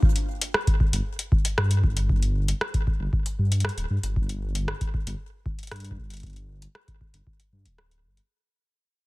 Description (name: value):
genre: IDM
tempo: 116 BPM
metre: 4/4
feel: straight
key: unclear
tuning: A4 = 440 Hz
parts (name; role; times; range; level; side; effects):
- electronic kick drum; drums; 0.0-7.4 s; none; -23 LUFS; equal; none
- booming analog drum machine; drums; 0.2-8.3 s; hi-hat, rim click; -29 LUFS; equal; soft clipping on snare, digital delay
- dark detuned saw bass; bass; 0.9-8.2 s; D1 to G2; -26 LUFS; equal; none
room: little or no reverb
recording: dense, heavily limited modern master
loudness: -23 LUFS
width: side -21 dB against mid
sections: 0.0-8.3 A section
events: fade-out 0.0-8.3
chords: none